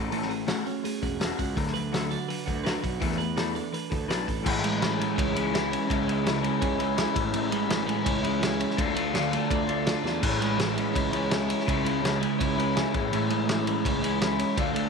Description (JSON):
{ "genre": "indie rock", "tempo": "166 BPM", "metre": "4/4", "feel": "straight", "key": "A major", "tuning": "A4 = 438 Hz", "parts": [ { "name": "electric guitar through a small old amp", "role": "riff", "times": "0.0-14.9 s", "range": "A2 to F#4", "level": "-29 LUFS", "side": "left 14 dB", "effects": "phaser" }, { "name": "twelve-string electric guitar", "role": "riff", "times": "0.0-14.9 s", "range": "A2 to B4", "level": "-30 LUFS", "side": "right 13 dB", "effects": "wide subtle chorus" }, { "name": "fuzz picked electric bass", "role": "bass", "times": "0.0-14.9 s", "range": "E1 to E2", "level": "-34 LUFS", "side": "equal", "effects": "overdrive" }, { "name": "loose indie drum kit", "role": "drums", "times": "0.1-14.8 s", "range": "crash cymbal, hi-hat, kick drum, ride cymbal, snare drum", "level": "-30 LUFS", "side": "equal", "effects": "none" }, { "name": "warm French horn section", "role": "sustained chords", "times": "4.4-14.9 s", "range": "E3 to D5", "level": "-39 LUFS", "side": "equal", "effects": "none" } ], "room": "light reverb, small room ambience", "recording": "1960s-style stereo with parts hard left and right", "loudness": "-24 LUFS", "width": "side -5 dB against mid", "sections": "0.0-4.5 A section; 4.5-14.9 B section", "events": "drum fill 10.0", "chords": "0.0 F#madd9/A; 1.6 D6; 3.0 E7sus4; 4.5 Amaj7; 5.9 C#m; 7.2 Amaj7; 8.8 Dm; 10.2 Amaj7; 11.7 C#m; 12.9 Amaj7" }